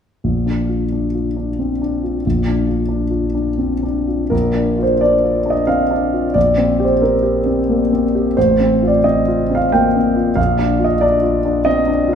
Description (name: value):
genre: classical, romantic character piece for solo piano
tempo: 89 BPM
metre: 3/4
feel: uneven beats, rubato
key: Bb major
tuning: A4 = 440 Hz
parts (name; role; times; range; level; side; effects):
- warm concert grand piano; solo; 0.2-12.2 s; A1 to G5; -14 LUFS; equal; none
room: wet stone room reverb, RT60 1.3 s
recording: minimal, uncompressed stereo recording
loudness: -14 LUFS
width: side -7 dB against mid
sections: 0.2-4.3 A section; 4.3-12.2 B section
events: none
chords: 0.2 Bb; 6.4 C5/Bb; 8.4 F/A; 10.4 Bb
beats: | 0.23 0.92 1.58 | 2.25 2.89 3.57 | 4.32 5.02 5.68 | 6.36 7.02 7.68 | 8.36 9.05 9.73 | 10.38 11.04 11.67